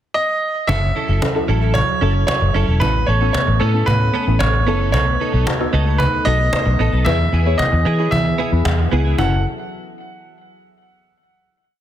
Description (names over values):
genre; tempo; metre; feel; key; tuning
dance-pop; 113 BPM; 4/4; straight; F# dorian; A4 = 440 Hz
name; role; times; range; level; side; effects
clear baby grand piano; melody; 0.1-9.4 s; A4 to F#5; -21 LUFS; right 2 dB; tape echo
lush unison pad; sustained chords; 0.7-9.4 s; E3 to A4; -27 LUFS; left 1 dB; chorus
direct-recorded clean electric guitar; riff; 0.7-9.3 s; B3 to A4; -26 LUFS; right 6 dB; ensemble chorus
vintage muted fingered electric bass; bass; 0.7-9.4 s; E1 to E3; -17 LUFS; equal; none
cajon; drums; 0.7-9.3 s; none; -24 LUFS; left 1 dB; none
deep mellow chord stab; accompaniment; 1.2-9.4 s; B3 to C#5; -25 LUFS; left 2 dB; chorus, phaser
room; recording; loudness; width
light reverb, small room ambience; dense, heavily limited modern master; -15 LUFS; side -11 dB against mid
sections
0.0-0.7 pickup bar; 0.7-9.2 verse; 9.2-11.3 final chord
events
none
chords
0.0 N.C.; 0.7 F#m7; 2.8 Aadd9; 4.9 B7; 7.1 E; 9.2 F#m7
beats
0.16 | 0.69 1.22 1.75 2.28 | 2.81 3.35 3.88 4.41 | 4.94 5.47 6.00 6.53 | 7.06 7.59 8.12 8.65 | 9.19